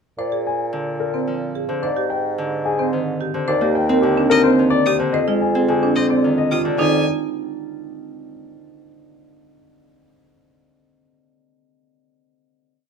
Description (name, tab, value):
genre	classical, minimalist pattern music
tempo	109 BPM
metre	3/4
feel	straight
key	F dorian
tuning	A4 = 435 Hz
part	warm grand piano	melody	0.2-7.0 s	G4 to Ab5	-21 LUFS	left 9 dB	none
part	marimba with medium mallets	arpeggios	0.2-7.0 s	C4 to C5	-23 LUFS	right 9 dB	none
part	mellow bassoon	bass	0.2-7.0 s	Eb2 to Bb2	-24 LUFS	right 2 dB	none
part	Celtic harp	accompaniment	0.7-8.5 s	C3 to C4	-22 LUFS	left 2 dB	none
part	clear violin	arpeggios	4.3-7.0 s	Eb5 to Eb6	-24 LUFS	left 2 dB	none
room	little or no reverb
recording	close, detailed microphones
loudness	-17 LUFS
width	side -6 dB against mid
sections	0.2-6.8 A section; 6.8-8.4 final chord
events	none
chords	0.2 Bb7; 1.8 Abmaj7; 3.5 Ebmaj7; 5.1 Fm7